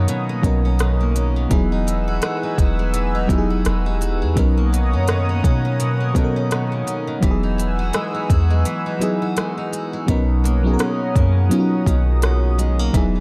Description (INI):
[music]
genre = contemporary R&B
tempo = 84 BPM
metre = 4/4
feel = swing 58% on 16ths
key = B major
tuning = A4 = 440 Hz
[part]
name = mellow FM electric piano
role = accompaniment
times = 0.0-13.2 s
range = F#3 to A#4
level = -26 LUFS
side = equal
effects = chorus, phaser
[part]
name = chorused pulse-width pad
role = sustained chords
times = 0.0-13.2 s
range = B4 to E6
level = -31 LUFS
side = equal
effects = sidechain pumping
[part]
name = picked steel-string acoustic guitar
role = arpeggios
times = 0.0-13.2 s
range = B2 to F#4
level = -29 LUFS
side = equal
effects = tape echo
[part]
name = soft 808-style bass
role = bass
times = 0.0-13.2 s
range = E1 to B2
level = -21 LUFS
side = equal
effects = none
[part]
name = smooth R&B drum kit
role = drums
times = 0.1-13.1 s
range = hi-hat, kick drum, rim click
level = -23 LUFS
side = equal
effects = overdrive
[sound]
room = light reverb, digital ambience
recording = dark, warm production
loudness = -19 LUFS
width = mono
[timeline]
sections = 0.0-10.1 A section; 10.1-13.2 B section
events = break 8.7-10.1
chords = 0.0 Bmaj9; 1.5 Emaj9; 4.4 Bmaj9; 7.2 Emaj9; 10.1 Bmaj9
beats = 0.08 0.80 | 1.51 2.23 2.94 3.65 | 4.37 5.08 5.80 6.51 | 7.23 7.94 8.65 9.37 | 10.08 10.80 11.51 12.23 | 12.94